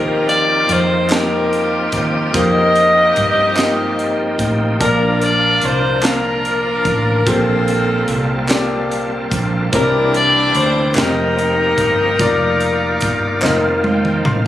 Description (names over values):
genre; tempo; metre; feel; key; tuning
slow gospel; 49 BPM (dotted quarters); 6/8; straight; Bb major; A4 = 441 Hz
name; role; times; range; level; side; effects
clear saxophone section; melody; 0.0-13.8 s; C4 to Eb5; -16 LUFS; left 1 dB; none
warm concert grand piano; accompaniment; 0.0-14.5 s; Bb2 to C6; -20 LUFS; left 1 dB; none
bright tonewheel organ; sustained chords; 0.0-14.5 s; Eb3 to G5; -22 LUFS; right 2 dB; fast rotary speaker, overdrive, chorus vibrato
woody fretless electric bass; bass; 0.0-14.5 s; F1 to G2; -21 LUFS; right 1 dB; none
crisp fusion drum kit; drums; 0.3-14.4 s; hi-hat, kick drum, snare drum, toms; -21 LUFS; right 1 dB; none
group handclap; percussion; 1.1-13.8 s; none; -25 LUFS; equal; none
room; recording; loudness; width
light reverb; recorded on a phone in the room, studio reverb, compression; -13 LUFS; side -12 dB against mid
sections
0.0-14.5 A section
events
drum fill 13.4-14.5; grand piano fill 13.4-14.5; tonewheel organ fill 13.4-14.5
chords
0.0 Eb69; 2.3 F9sus4; 4.8 Bbmaj7; 7.3 Gm11/Bb; 9.7 C9; 11.0 F9sus4; 12.2 Bb/F; 13.4 F7sus4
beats
1.11 | 2.34 3.58 | 4.81 6.04 | 7.27 8.50 | 9.73 10.96 | 12.19 13.43